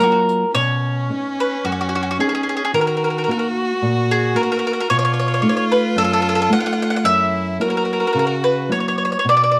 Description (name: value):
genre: italian folk, Italian serenade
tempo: 110 BPM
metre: 4/4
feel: rubato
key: unclear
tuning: A4 = 440 Hz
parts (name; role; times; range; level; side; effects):
- bowl-back mandolin; melody; 0.0-9.6 s; F#4 to F#5; -20 LUFS; equal; none
- clear violin; second line; 0.0-9.6 s; C#4 to F#4; -27 LUFS; equal; none
- nylon-string guitar; accompaniment; 0.0-9.6 s; F#2 to F#4; -24 LUFS; equal; none
room: moderate echo chamber reverb, RT60 1.4 s, small room ambience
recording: none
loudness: -19 LUFS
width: mono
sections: 0.5-9.6 A section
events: none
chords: 0.0 F#maj7; 0.5 Badd9; 2.7 D#m; 4.9 B7; 7.1 F#7